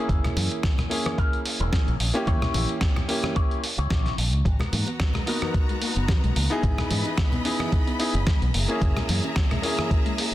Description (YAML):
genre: nu-disco, nu disco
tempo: 110 BPM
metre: 4/4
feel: swing 55% on 16ths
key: unclear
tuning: A4 = 440 Hz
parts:
  - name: bright concert grand piano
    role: accompaniment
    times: 0.0-10.3 s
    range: A#3 to A#4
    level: -29 LUFS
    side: equal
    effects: sidechain pumping, dub echo
  - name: electric guitar with an envelope filter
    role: riff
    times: 0.0-4.1 s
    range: E4 to C#5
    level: -33 LUFS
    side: left 2 dB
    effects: wide subtle chorus, dub echo
  - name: fingered electric bass with an envelope filter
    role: bass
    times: 0.1-9.2 s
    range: E1 to G#2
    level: -25 LUFS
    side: equal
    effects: none
  - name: dusty soul sampler-style drum kit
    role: drums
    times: 0.1-10.3 s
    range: hi-hat, rim click, snare drum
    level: -29 LUFS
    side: equal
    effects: none
  - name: electronic kick drum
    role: drums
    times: 0.1-10.0 s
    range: none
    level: -24 LUFS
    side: equal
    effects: none
  - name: congas and bongos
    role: percussion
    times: 0.3-9.9 s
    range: none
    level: -32 LUFS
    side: left 1 dB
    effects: none
  - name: bright studio string section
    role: sustained chords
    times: 4.5-10.3 s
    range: E3 to B5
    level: -33 LUFS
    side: left 1 dB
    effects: sidechain pumping
  - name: soft round pluck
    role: arpeggios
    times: 4.5-10.3 s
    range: F#3 to D#4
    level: -34 LUFS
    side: left 2 dB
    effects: chorus, sidechain pumping, dub echo
room: light reverb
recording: dense, heavily limited modern master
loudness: -22 LUFS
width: side -14 dB against mid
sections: 0.0-10.3 A section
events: none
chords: 0.0 F#9 (rootless); 2.3 D#7b9 (rootless); 4.5 G#m9; 6.6 C#m9/G#; 8.5 F#9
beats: | 0.09 0.64 1.18 1.73 | 2.27 2.82 3.36 3.91 | 4.45 5.00 5.54 6.09 | 6.63 7.18 7.73 8.27 | 8.82 9.36 9.91